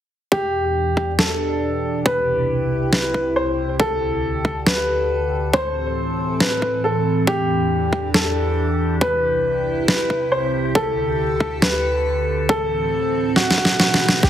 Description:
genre	heavy wobble dubstep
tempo	138 BPM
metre	4/4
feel	half-time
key	E minor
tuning	A4 = 441 Hz
part	clear baby grand piano	melody	0.3-14.3 s	F#4 to C5	-21 LUFS	left 1 dB	tape echo
part	evolving wavetable pad	sustained chords	0.5-14.3 s	C2 to B4	-22 LUFS	equal	phaser, built-in reverb, sidechain pumping
part	electronic kick drum	drums	0.3-14.3 s	none	-20 LUFS	equal	overdrive, high-pass filter on kick, small room ambience
part	electronic snare drum	drums	1.2-14.3 s	none	-17 LUFS	equal	overdrive, small room ambience
room	moderate plate reverb, RT60 1.1 s, digital ambience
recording	heavily compressed radio sound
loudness	-17 LUFS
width	side -10 dB against mid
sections	0.3-14.2 A section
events	filter sweep on ambient pad 0.3-14.2; drum fill 13.4-14.2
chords	0.3 Em7; 2.1 C; 3.8 Dsus4; 5.5 Am; 7.3 Em7; 9.0 C; 10.8 Dsus4; 12.5 Am; 13.4 B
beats	| 0.32 0.75 1.19 1.62 | 2.06 2.49 2.93 3.36 | 3.80 4.23 4.67 5.10 | 5.54 5.97 6.41 6.84 | 7.27 7.71 8.14 8.58 | 9.01 9.45 9.88 10.32 | 10.75 11.19 11.62 12.06 | 12.49 12.93 13.36 13.80 | 14.23

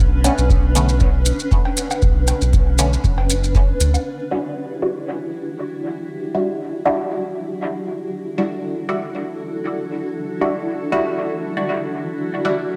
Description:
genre	dub techno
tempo	118 BPM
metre	4/4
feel	swing 54% on 16ths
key	E dorian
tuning	A4 = 441 Hz
part	granular cloud pad	sustained chords	0.0-12.8 s	C#4 to B4	-28 LUFS	equal	built-in reverb, subtle chorus, sidechain pumping
part	round analog bass	bass	0.0-4.0 s	F#1 to D2	-20 LUFS	equal	tube saturation, sidechain pumping
part	maracas	percussion	0.0-4.0 s	none	-28 LUFS	equal	none
part	filtered dub chord stab	stabs	0.2-12.5 s	D3 to F#4	-25 LUFS	equal	phaser, sidechain pumping, dub echo
part	electronic hi-hat	drums	0.2-3.9 s	none	-27 LUFS	equal	low-pass filter on hats, low-pass filter on room
part	cowbell and woodblock	percussion	0.2-4.0 s	none	-34 LUFS	equal	sidechain pumping on perc, dub echo
part	electronic kick drum	drums	0.5-3.7 s	none	-19 LUFS	equal	none
room	moderate plate reverb, RT60 2.4 s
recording	dreamy mix soaked in reverb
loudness	-20 LUFS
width	mono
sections	0.0-4.1 A section; 4.1-12.8 B section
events	none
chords	0.0 Bmadd9; 4.1 Em9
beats	0.50 1.01 1.52 | 2.02 2.53 3.04 3.55 | 4.06 4.57 5.08 5.58 | 6.09 6.60 7.11 7.62 | 8.13 8.63 9.14 9.65 | 10.16 10.67 11.18 11.69 | 12.20 12.70

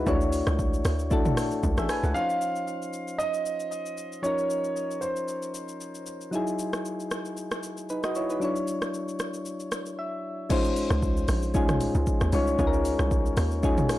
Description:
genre	amapiano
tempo	115 BPM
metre	4/4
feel	swing 55% on 16ths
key	Db major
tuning	A4 = 442 Hz
part	soft electric-piano-like synth keys	accompaniment	0.0-14.0 s	F3 to Ab5	-28 LUFS	left 2 dB	chorus
part	tight log drum bass	bass	0.0-2.1, 10.9-13.8 s	A1 to Eb2	-27 LUFS	equal	none
part	deep house drum kit	drums	0.1-14.0 s	crash cymbal, hi-hat, kick drum, rim click, shaker, toms	-29 LUFS	right 1 dB	soft clipping on snare
part	dark grand piano	melody	2.1-6.0 s	C5 to F5	-29 LUFS	right 2 dB	ping-pong delay
room	light reverb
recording	blown-out, overdriven recording, overdrive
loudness	-25 LUFS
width	side -15 dB against mid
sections	0.0-2.2 A section; 2.2-10.5 B section; 10.5-14.0 A section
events	drop 0.0-2.2, 10.5-14.0; synth keys fill 9.7-10.5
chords	0.1 Dmaj9; 2.2 Dbmaj9; 6.3 Emaj9; 8.4 Dmaj9; 10.5 Dbmaj9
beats	| 0.07 0.59 1.11 1.63 | 2.15 2.68 3.20 3.72 | 4.24 4.76 5.28 5.81 | 6.33 6.85 7.37 7.89 | 8.41 8.94 9.46 9.98 | 10.50 11.02 11.54 12.07 | 12.59 13.11 13.63

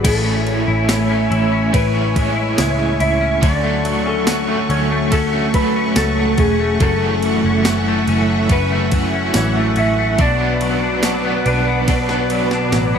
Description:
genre	dream pop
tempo	71 BPM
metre	4/4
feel	straight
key	unclear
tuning	A4 = 440 Hz
part	clean lap steel guitar	melody	0.0-12.7 s	G#4 to E5	-23 LUFS	left 2 dB	tape echo
part	overdriven electric guitar	accompaniment	0.0-13.0 s	F#2 to G#4	-21 LUFS	right 3 dB	tremolo, wide subtle chorus
part	string machine, violas	sustained chords	0.0-13.0 s	A3 to D6	-23 LUFS	right 1 dB	ensemble chorus
part	clean electric guitar	arpeggios	0.0-13.0 s	F#2 to E4	-21 LUFS	left 4 dB	ensemble chorus, tape echo
part	vintage muted picked electric bass	bass	0.0-13.0 s	E1 to D2	-21 LUFS	equal	none
part	clean 12-bit digital drum machine	drums	0.0-12.9 s	crash cymbal, kick drum, ride cymbal, snare drum, tambourine	-21 LUFS	equal	overdrive
room	wet concert hall reverb, RT60 2.1 s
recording	none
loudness	-14 LUFS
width	side -7 dB against mid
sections	0.0-13.0 A section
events	drum fill 11.9-13.0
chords	0.0 Amaj7; 3.4 Dmaj7; 6.8 F#m7; 10.2 Bm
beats	| 0.05 0.89 1.74 2.58 | 3.43 4.27 5.12 5.96 | 6.81 7.65 8.50 9.34 | 10.19 11.03 11.88 12.72

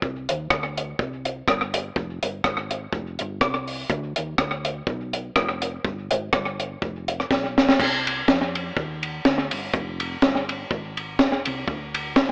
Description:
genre	ska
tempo	124 BPM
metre	4/4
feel	swing 55% on 8ths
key	C harmonic minor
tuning	A4 = 440 Hz
part	hollow-body short-scale fingered electric bass	bass	0.0-12.3 s	F1 to F2	-36 LUFS	equal	none
part	compact cocktail drum kit	drums	0.0-12.3 s	crash cymbal, hi-hat, kick drum, ride cymbal, rim click, snare drum	-25 LUFS	equal	slapback echo
room	moderate spring reverb, RT60 1.8 s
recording	AM radio sound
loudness	-25 LUFS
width	mono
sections	0.0-7.8 A section; 7.8-12.3 B section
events	drum fill 7.3-7.8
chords	none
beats	| 0.02 0.51 0.99 1.48 | 1.96 2.44 2.93 3.42 | 3.90 4.39 4.87 5.36 | 5.84 6.33 6.82 7.30 | 7.79 8.28 8.76 9.25 | 9.73 10.22 10.71 11.19 | 11.68 12.16

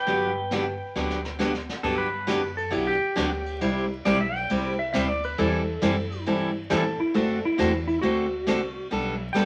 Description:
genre	country, western swing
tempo	136 BPM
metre	4/4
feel	swing 67% on 8ths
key	G major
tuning	A4 = 441 Hz
part	pedal steel guitar	melody	0.0-1.4 s	B4 to G5	-31 LUFS	equal	none
part	picked steel-string acoustic guitar	accompaniment	0.1-9.5 s	C3 to A4	-27 LUFS	equal	none
part	upright bass	bass	0.1-9.5 s	G1 to A2	-37 LUFS	equal	none
part	jazz brush drum kit	drums	0.1-9.5 s	brushed snare drum, crash cymbal, hi-hat, kick drum, ride cymbal, snare drum	-39 LUFS	equal	none
part	clean lap steel guitar	second line	1.8-9.5 s	E4 to G5	-30 LUFS	equal	none
room	wet studio reverb, RT60 0.5 s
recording	vinyl crackle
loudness	-26 LUFS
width	mono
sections	0.0-1.8 A section; 1.8-9.5 B section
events	drum fill 1.0-1.8; electric slide guitar solo 1.8-9.5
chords	0.1 Gmaj7; 3.6 C; 5.4 Am7; 7.1 D7; 8.9 Gadd9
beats	| 0.07 0.51 0.96 1.40 | 1.84 2.29 2.73 3.17 | 3.61 4.05 4.50 4.94 | 5.38 5.82 6.26 6.70 | 7.14 7.59 8.03 8.47 | 8.91 9.35

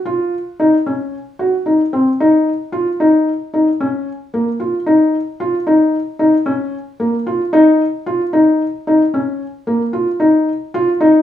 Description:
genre	contemporary instrumental, contemporary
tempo	112 BPM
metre	5/4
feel	straight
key	Eb dorian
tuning	A4 = 440 Hz
part	felt-muted upright piano	solo	0.1-11.2 s	Bb3 to Gb4	-13 LUFS	left 1 dB	none
room	wet studio reverb, RT60 0.6 s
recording	heard from further back in the room, small room reverb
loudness	-13 LUFS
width	side -11 dB against mid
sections	0.0-2.2 A section; 2.2-11.2 B section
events	none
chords	none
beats	0.06 0.59 1.13 1.66 | 2.20 2.73 3.27 3.80 4.33 | 4.87 5.40 5.93 6.47 7.00 | 7.54 8.07 8.60 9.14 9.67 | 10.21 10.74

